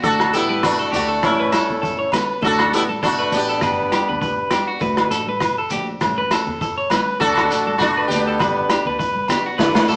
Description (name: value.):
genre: highlife guitar band.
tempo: 100 BPM.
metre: 4/4.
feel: swing 55% on 16ths.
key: D major.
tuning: A4 = 441 Hz.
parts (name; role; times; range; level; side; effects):
sitar; melody; 0.0-9.0 s; C#4 to A4; -22 LUFS; equal; none.
bright trumpet; second line; 0.0-8.9 s; A3 to D4; -30 LUFS; equal; none.
picked steel-string acoustic guitar; accompaniment; 0.0-10.0 s; E3 to A4; -32 LUFS; equal; none.
electric guitar at the edge of break-up; arpeggios; 0.0-10.0 s; F#4 to C#5; -26 LUFS; equal; none.
upright bass; bass; 0.0-10.0 s; G1 to D3; -33 LUFS; equal; none.
vintage drum kit; drums; 0.0-9.9 s; hi-hat, kick drum, rim click, snare drum; -26 LUFS; equal; none.
shekere; percussion; 0.0-10.0 s; none; -37 LUFS; equal; none.
agogo bells; percussion; 0.2-9.9 s; none; -26 LUFS; equal; none.
congas; percussion; 0.5-9.4 s; none; -34 LUFS; equal; none.
tonewheel organ; sustained chords; 9.6-10.0 s; F#5 to D6; -31 LUFS; equal; slow rotary speaker, chorus vibrato.
room: wet stone room reverb, RT60 1.2 s.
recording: band playing live in one room, small speaker sound.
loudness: -19 LUFS.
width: mono.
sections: 0.0-9.6 A section.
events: none.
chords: 0.0 D; 1.2 A; 2.4 D; 3.6 G; 4.8 D; 6.0 A; 7.2 D; 8.4 G.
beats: | 0.03 0.63 1.23 1.82 | 2.42 3.02 3.62 4.21 | 4.81 5.41 6.00 6.60 | 7.20 7.79 8.39 8.99 | 9.58.